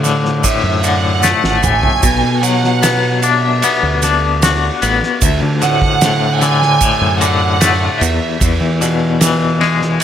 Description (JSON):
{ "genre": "psychedelic rock", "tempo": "75 BPM", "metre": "4/4", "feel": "straight", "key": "D lydian", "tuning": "A4 = 436 Hz", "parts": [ { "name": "twangy electric guitar", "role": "riff", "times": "0.0-10.0 s", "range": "D2 to F#4", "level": "-15 LUFS", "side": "left 7 dB", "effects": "tremolo" }, { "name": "growling fingered electric bass", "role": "bass", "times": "0.0-10.0 s", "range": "G#1 to E3", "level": "-17 LUFS", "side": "right 2 dB", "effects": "overdrive" }, { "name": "tube shaker", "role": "percussion", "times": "0.0-10.0 s", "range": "none", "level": "-20 LUFS", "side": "right 23 dB", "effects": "none" }, { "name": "cloth-damped thuddy drum kit", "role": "drums", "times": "0.1-10.0 s", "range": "kick drum, ride cymbal, snare drum, toms", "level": "-19 LUFS", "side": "right 2 dB", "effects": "none" }, { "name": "rich studio string section", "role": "sustained chords", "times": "0.4-8.8 s", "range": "E5 to G#5", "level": "-18 LUFS", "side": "right 8 dB", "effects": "none" } ], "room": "small room ambience", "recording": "none", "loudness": "-11 LUFS", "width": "side -9 dB against mid", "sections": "0.0-10.0 A section", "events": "string section solo 0.0-10.0; drum fill 1.2-2.0", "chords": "0.0 D; 2.0 Bm; 5.2 D; 8.0 E" }